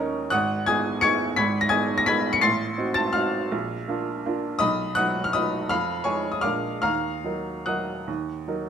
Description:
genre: classical, piano waltz.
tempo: 144-179 BPM.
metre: 3/4.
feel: rubato.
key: Eb minor.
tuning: A4 = 441 Hz.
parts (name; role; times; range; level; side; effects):
clear upright piano; solo; 0.0-8.7 s; Ab1 to Db7; -22 LUFS; equal; none.
room: moderate recital hall reverb, RT60 1.4 s.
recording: close, detailed microphones.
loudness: -22 LUFS.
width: side -8 dB against mid.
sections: 0.0-8.7 A section.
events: none.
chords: 0.3 Abm7; 2.4 Adim7; 3.5 Bb; 4.6 B; 5.7 Fm7b5; 6.4 Bb7; 6.8 Ebm.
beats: | 0.33 0.67 1.03 | 1.38 1.73 2.08 | 2.44 2.80 3.16 | 3.53 3.90 4.26 | 4.62 4.98 5.35 | 5.71 6.06 6.45 | 6.84 7.26 7.67 | 8.08 8.47.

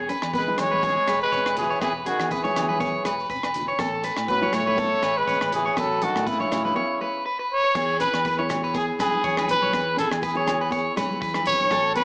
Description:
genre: highlife guitar band.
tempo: 121 BPM.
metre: 4/4.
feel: swing 54% on 16ths.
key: E major.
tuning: A4 = 441 Hz.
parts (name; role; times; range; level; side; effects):
nylon-string guitar; accompaniment; 0.0-12.0 s; G#3 to E4; -37 LUFS; equal; none.
electric guitar at the edge of break-up; arpeggios; 0.0-12.0 s; G#4 to C#5; -29 LUFS; equal; spring reverb, slapback echo.
fingered electric bass; bass; 0.0-12.0 s; E1 to A2; -37 LUFS; equal; none.
compact cocktail drum kit; drums; 0.1-12.0 s; crash cymbal, hi-hat, kick drum, rim click; -37 LUFS; equal; none.
shekere; percussion; 0.1-12.0 s; none; -44 LUFS; equal; none.
agogo bells; percussion; 0.2-11.8 s; none; -37 LUFS; equal; none.
breathy trumpet; melody; 0.3-12.0 s; E4 to C#5; -26 LUFS; equal; slapback echo.
growling tenor saxophone; second line; 0.4-7.3 s; C#3 to A3; -36 LUFS; equal; slapback echo.
congas; percussion; 0.5-11.7 s; none; -39 LUFS; equal; none.
mellow tonewheel organ; sustained chords; 7.8-12.0 s; B3 to A4; -38 LUFS; equal; slow rotary speaker.
room: moderate plate reverb, RT60 1.7 s.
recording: small speaker sound.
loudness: -24 LUFS.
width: mono.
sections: 0.0-7.8 A section; 7.8-12.0 B section.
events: none.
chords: 0.0 E; 3.8 A; 7.8 E.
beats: 0.34 0.83 1.33 | 1.82 2.31 2.81 3.30 | 3.80 4.29 4.79 5.28 | 5.78 6.27 6.77 7.26 | 7.76 8.25 8.75 9.24 | 9.73 10.23 10.72 11.22 | 11.71.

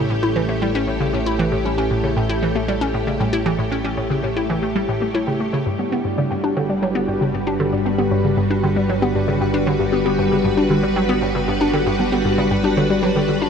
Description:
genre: ambient, sequencer-driven space music.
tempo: 116 BPM.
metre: 4/4.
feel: straight.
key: G lydian.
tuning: A4 = 439 Hz.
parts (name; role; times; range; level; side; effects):
string machine, full ensemble; sustained chords; 0.0-13.5 s; G3 to C#5; -20 LUFS; equal; ensemble chorus.
warbly dusty pluck; arpeggios; 0.0-13.5 s; G3 to G5; -28 LUFS; left 4 dB; chorus, auto-pan, ping-pong delay.
hollow square pluck; riff; 0.0-13.5 s; G2 to E4; -21 LUFS; equal; chorus, ping-pong delay.
analog drone; bass; 0.0-13.5 s; G1 to A1; -27 LUFS; equal; chorus.
room: wet huge ambient reverb, RT60 7.7 s.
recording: none.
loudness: -17 LUFS.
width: side -7 dB against mid.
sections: 0.0-13.5 A section.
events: fade-in on synth arpeggio sound 0.0-13.5.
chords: 0.0 A7; 5.7 Gmaj7.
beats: 0.49 1.00 | 1.52 2.04 2.56 3.07 | 3.59 4.11 4.62 5.14 | 5.66 6.18 6.69 7.21 | 7.73 8.24 8.76 9.28 | 9.80 10.31 10.83 11.35 | 11.87 12.38 12.90 13.42.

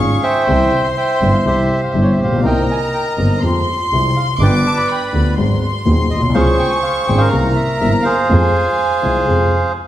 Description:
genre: tango.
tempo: 123 BPM.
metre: 4/4.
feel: rubato.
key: F minor.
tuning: A4 = 439 Hz.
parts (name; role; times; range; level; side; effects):
bandoneon; melody; 0.0-9.7 s; G4 to B5; -17 LUFS; right 2 dB; none.
warm studio violin section; second line; 0.0-9.8 s; Ab5 to D6; -22 LUFS; left 1 dB; none.
warm upright piano; accompaniment; 0.0-9.5 s; Eb1 to Ab4; -18 LUFS; left 2 dB; none.
dark double bass; bass; 0.0-9.5 s; G1 to F2; -18 LUFS; right 1 dB; none.
room: wet large studio reverb, RT60 1.5 s.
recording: heard from further back in the room.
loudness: -13 LUFS.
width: side -13 dB against mid.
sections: 0.0-9.9 A section.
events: none.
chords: 0.5 C; 2.4 Cm7; 3.4 Fmadd9; 4.4 G7; 5.4 Ab7; 6.4 Dbmaj7; 7.3 C7; 8.3 Fm.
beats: | 0.48 0.97 1.46 1.95 | 2.44 2.93 3.42 3.91 | 4.40 4.89 5.38 5.87 | 6.36 6.84 7.33 7.82 | 8.31 8.79 9.28.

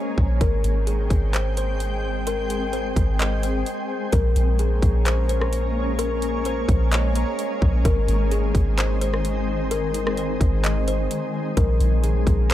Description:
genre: hip hop, atmospheric cloud-rap.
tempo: 129 BPM.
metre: 4/4.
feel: half-time.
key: Ab major.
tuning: A4 = 440 Hz.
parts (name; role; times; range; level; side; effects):
shimmering ambient pad; sustained chords; 0.0-12.5 s; Eb3 to G5; -27 LUFS; equal; chorus, built-in reverb, sidechain pumping.
soft 808-style bass; bass; 0.2-12.5 s; Ab1 to Bb1; -22 LUFS; equal; none.
trap drum kit; drums; 0.2-12.5 s; handclaps, hi-hat, kick drum, rim click; -23 LUFS; equal; none.
kalimba; melody; 0.4-12.5 s; Ab4 to Eb5; -28 LUFS; left 3 dB; tape echo.
room: little or no reverb.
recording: dry, gritty hardware recording.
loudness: -20 LUFS.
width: side -13 dB against mid.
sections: 0.0-4.1 A section; 4.1-12.5 B section.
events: none.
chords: 0.4 Abmaj7; 4.1 Bbm9; 7.8 Ab; 11.6 Bbm7.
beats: | 0.41 0.87 1.34 1.80 | 2.27 2.73 3.20 3.66 | 4.13 4.59 5.06 5.53 | 5.99 6.46 6.92 7.38 | 7.85 8.31 8.78 9.25 | 9.71 10.18 10.64 11.11 | 11.57 12.04 12.50.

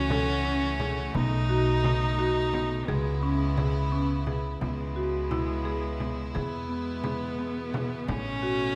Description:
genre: contemporary instrumental, chamber music in an uneven meter.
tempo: 173 BPM (eighths).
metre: 5/8.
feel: straight.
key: C# minor.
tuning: A4 = 441 Hz.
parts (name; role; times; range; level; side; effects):
rich viola; second line; 0.0-8.8 s; G#3 to D#4; -35 LUFS; equal; none.
rich chamber string section; sustained chords; 0.0-8.8 s; B2 to F#4; -37 LUFS; equal; none.
upright bass; bass; 0.0-8.8 s; A1 to E2; -33 LUFS; equal; none.
buzzing marimba with hard mallets; arpeggios; 0.1-8.7 s; B3 to A4; -34 LUFS; equal; none.
frame drum; percussion; 0.1-8.4 s; none; -37 LUFS; equal; none.
room: wet scoring stage reverb, RT60 1.6 s.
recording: none.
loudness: -28 LUFS.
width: mono.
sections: 0.0-4.6 A section; 4.6-8.8 B section.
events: none.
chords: 0.0 F#m7/C#; 1.1 B7; 2.9 C#m7; 6.4 E; 8.1 Aadd9.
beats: 0.11 0.46 0.80 | 1.15 1.50 1.84 2.19 2.54 | 2.88 3.23 3.58 3.93 4.27 | 4.62 4.97 5.32 5.66 6.01 | 6.36 6.70 7.05 7.40 7.74 | 8.09 8.44.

